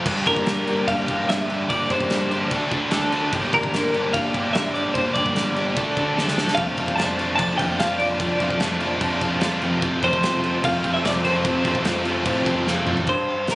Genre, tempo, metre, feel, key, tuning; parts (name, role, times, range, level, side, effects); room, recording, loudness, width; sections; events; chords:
indie rock; 148 BPM; 4/4; straight; G minor; A4 = 439 Hz
biting overdriven guitar; riff; 0.0-13.1 s; F2 to A4; -27 LUFS; right 2 dB; lush chorus
distorted electric guitar; riff; 0.0-13.6 s; F2 to A4; -26 LUFS; left 2 dB; distortion
bright tonewheel organ; sustained chords; 0.1-13.1 s; D4 to D6; -34 LUFS; equal
fuzz picked electric bass; bass; 0.1-13.6 s; G1 to A2; -29 LUFS; equal; overdrive
loose indie drum kit; drums; 0.1-13.6 s; crash cymbal, hi-hat, kick drum, snare drum, toms; -26 LUFS; equal
twelve-string electric guitar; melody; 0.3-13.6 s; Bb4 to A5; -24 LUFS; equal
glassy synth bell; second line; 0.3-12.8 s; Bb5 to A6; -35 LUFS; equal
light reverb; recorded on a phone in the room, club ambience, nothing above 10.7 kHz; -19 LUFS; side -19 dB against mid
0.1-13.1 A section
drum fill 6.2-6.6, 12.7-13.1
0.1 Gm; 2.5 D5; 3.3 Gm; 5.8 D5; 6.6 Dm7/F; 9.6 Fadd9